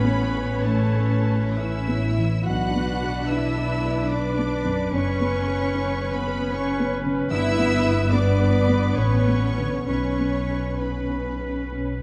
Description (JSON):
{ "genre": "cinematic", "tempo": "62-76 BPM", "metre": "3/4", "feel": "rubato", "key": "B minor", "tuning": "A4 = 440 Hz", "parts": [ { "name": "clear symphonic violin section", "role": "melody", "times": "0.0-11.7 s", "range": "A5 to F#6", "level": "-38 LUFS", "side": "equal", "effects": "none" }, { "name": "clear oboe", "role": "second line", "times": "0.0-12.0 s", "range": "B4", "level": "-37 LUFS", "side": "equal", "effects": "none" }, { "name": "clear symphonic violin section", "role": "second line", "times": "0.0-11.7 s", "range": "A4 to F#5", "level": "-39 LUFS", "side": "equal", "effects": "none" }, { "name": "large flute ensemble", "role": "second line", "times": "0.0-11.7 s", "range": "A4 to F#5", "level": "-36 LUFS", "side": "equal", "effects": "none" }, { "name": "mellow clarinet", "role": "second line", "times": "0.0-12.0 s", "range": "B3 to D4", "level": "-36 LUFS", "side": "equal", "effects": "none" }, { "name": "felt-muted upright piano", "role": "accompaniment", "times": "0.0-12.0 s", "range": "B1 to D5", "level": "-30 LUFS", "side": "equal", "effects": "none" }, { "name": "rich symphonic viola section", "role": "accompaniment", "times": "0.0-12.0 s", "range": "B3 to C#5", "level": "-34 LUFS", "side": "equal", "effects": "none" }, { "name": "warm French horn section", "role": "sustained chords", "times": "0.0-12.0 s", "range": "B3 to B4", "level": "-34 LUFS", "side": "equal", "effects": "none" }, { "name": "rich symphonic cello section", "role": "bass", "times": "0.0-11.7 s", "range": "A3 to F#4", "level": "-32 LUFS", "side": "equal", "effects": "none" }, { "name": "rich symphonic double bass section", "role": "bass", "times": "0.0-12.0 s", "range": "F#1 to B1", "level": "-27 LUFS", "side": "equal", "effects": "none" } ], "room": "moderate scoring stage reverb, RT60 1.6 s", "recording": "dark, warm production", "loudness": "-23 LUFS", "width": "mono", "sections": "0.0-12.0 A section", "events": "none", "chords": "0.0 Aadd9; 2.4 Bm; 4.9 F#sus4; 7.3 G; 9.9 Bsus2" }